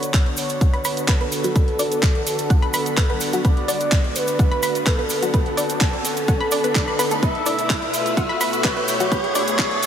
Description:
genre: progressive house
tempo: 127 BPM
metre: 4/4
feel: straight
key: B minor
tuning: A4 = 440 Hz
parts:
  - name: expressive portamento lead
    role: melody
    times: 0.0-9.9 s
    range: A4 to E5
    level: -25 LUFS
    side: equal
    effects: chorus, sidechain pumping, analog delay
  - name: lush unison pad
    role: sustained chords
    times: 0.0-9.9 s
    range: B2 to B4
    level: -28 LUFS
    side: equal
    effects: chorus, phaser, sidechain pumping
  - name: house drum kit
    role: drums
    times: 0.0-9.9 s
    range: handclaps, hi-hat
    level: -26 LUFS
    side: right 1 dB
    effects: sidechain pumping on hats
  - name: cabasa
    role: percussion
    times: 0.0-9.9 s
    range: none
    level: -31 LUFS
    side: left 2 dB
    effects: none
  - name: riser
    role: sound effects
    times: 2.2-9.9 s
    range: none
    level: -30 LUFS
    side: equal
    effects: none
  - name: electronic kick drum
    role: drums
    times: 0.1-9.7 s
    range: none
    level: -19 LUFS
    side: equal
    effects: none
  - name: analog pluck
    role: arpeggios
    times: 0.6-9.4 s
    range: F#4 to B5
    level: -26 LUFS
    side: left 1 dB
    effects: chorus, cassette tape, sidechain pumping, analog delay
room: moderate huge ambient reverb, RT60 4.1 s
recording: dreamy mix soaked in reverb, high-pass filter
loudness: -17 LUFS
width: side -9 dB against mid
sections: 0.0-9.9 A section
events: build-up 0.0-9.9; filter sweep on synth arpeggio sound 0.0-9.9; riser 2.2-9.9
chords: 0.0 Bm; 7.2 Esus4

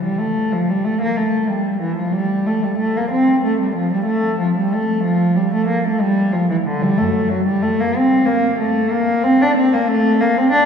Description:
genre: classical, baroque-style suite movement for unaccompanied cello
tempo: 62 BPM (dotted quarters)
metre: 12/8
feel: rubato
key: unclear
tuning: A4 = 440 Hz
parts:
  - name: dark cello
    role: solo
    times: 0.0-10.7 s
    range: F#2 to D4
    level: -15 LUFS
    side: equal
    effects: none
room: wet cathedral reverb, RT60 5.0 s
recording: heard from further back in the room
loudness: -15 LUFS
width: side -7 dB against mid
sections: 0.0-10.7 A section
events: none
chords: none

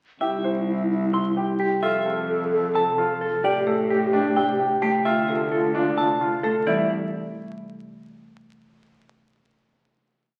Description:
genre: classical, minimalist pattern music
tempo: 260 BPM (eighths)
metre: 7/8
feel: straight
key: C major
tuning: A4 = 440 Hz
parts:
  - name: semi-hollow electric guitar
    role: melody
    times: 0.2-6.9 s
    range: G4 to C6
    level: -27 LUFS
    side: equal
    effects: none
  - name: mellow alto flute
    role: second line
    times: 0.2-6.4 s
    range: E4 to A4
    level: -28 LUFS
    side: equal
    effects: none
  - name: clear baby grand piano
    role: arpeggios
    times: 0.2-6.9 s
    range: D4 to C5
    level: -29 LUFS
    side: equal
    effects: none
  - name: rich cello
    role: bass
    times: 0.2-6.9 s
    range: C2 to A2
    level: -32 LUFS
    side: equal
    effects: none
  - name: marimba with medium mallets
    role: accompaniment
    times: 1.1-6.9 s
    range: C3 to A3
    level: -35 LUFS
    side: equal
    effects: none
room: wet recital hall reverb, RT60 1.6 s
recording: very old 78 rpm record, vinyl crackle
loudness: -23 LUFS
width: mono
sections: 0.2-6.7 A section; 6.7-8.3 final chord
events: none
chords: 0.2 C; 1.8 F; 3.4 Am7; 5.1 Dm7; 6.7 C

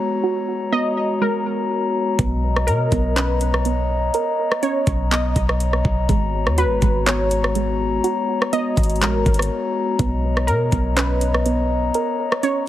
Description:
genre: hip hop, atmospheric cloud-rap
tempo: 123 BPM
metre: 4/4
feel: half-time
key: B major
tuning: A4 = 440 Hz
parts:
  - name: glass harmonica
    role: sustained chords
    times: 0.0-12.7 s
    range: G#3 to A#5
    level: -23 LUFS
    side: left 3 dB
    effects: none
  - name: soft round pluck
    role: arpeggios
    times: 0.0-12.7 s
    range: G#3 to A#5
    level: -26 LUFS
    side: right 7 dB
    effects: chorus, digital delay
  - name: warbly dusty pluck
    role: melody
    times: 0.7-12.7 s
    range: A#4 to D#5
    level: -25 LUFS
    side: equal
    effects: chorus, digital delay
  - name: soft 808-style bass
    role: bass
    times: 2.2-11.9 s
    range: G#1 to B2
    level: -21 LUFS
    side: equal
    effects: none
  - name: smooth R&B drum kit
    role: drums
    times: 2.2-12.5 s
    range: handclaps, hi-hat, kick drum, rim click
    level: -22 LUFS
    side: equal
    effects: none
room: digital ambience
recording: heavily compressed radio sound, lossy compression artefacts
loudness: -17 LUFS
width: side -13 dB against mid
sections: 0.0-2.2 A section; 2.2-12.7 B section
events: break 9.5-10.0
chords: 0.0 G#m11; 2.2 Bmaj9; 6.1 G#m11; 10.0 Bmaj9

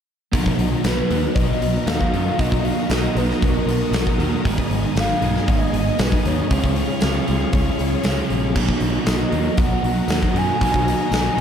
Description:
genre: rock, shoegaze and dream pop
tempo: 117 BPM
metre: 4/4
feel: straight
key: B lydian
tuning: A4 = 439 Hz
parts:
  - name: picked twelve-string acoustic guitar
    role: arpeggios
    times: 0.3-11.4 s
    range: D#3 to D#4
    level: -34 LUFS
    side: left 8 dB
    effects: none
  - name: electric guitar at the edge of break-up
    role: riff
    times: 0.3-11.4 s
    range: G#2 to B4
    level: -24 LUFS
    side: right 8 dB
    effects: reverse reverb
  - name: thick fuzz guitar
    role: riff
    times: 0.3-11.4 s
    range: G#2 to C#4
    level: -26 LUFS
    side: left 7 dB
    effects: distortion, ensemble chorus
  - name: picked electric bass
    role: bass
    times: 0.3-11.4 s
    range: G#1 to F#2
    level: -23 LUFS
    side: equal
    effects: none
  - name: huge arena drum kit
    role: drums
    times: 0.3-11.4 s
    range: crash cymbal, hi-hat, kick drum, snare drum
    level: -23 LUFS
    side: equal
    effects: none
  - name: string machine, violas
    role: sustained chords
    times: 0.4-11.4 s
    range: F#4 to D#6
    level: -31 LUFS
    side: equal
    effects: ensemble chorus
  - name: pure sine lead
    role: melody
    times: 0.8-11.4 s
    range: A#4 to G#5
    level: -26 LUFS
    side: equal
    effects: chorus, phaser, ping-pong delay
  - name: tambourine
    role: percussion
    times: 0.8-11.2 s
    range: none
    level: -41 LUFS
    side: right 9 dB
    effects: none
room: moderate plate reverb, RT60 2.6 s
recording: dreamy mix soaked in reverb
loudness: -17 LUFS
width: side -8 dB against mid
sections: 0.3-11.4 A section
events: none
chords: 0.3 Bmaj7; 4.4 G#m; 6.5 C#; 8.6 Bmaj7

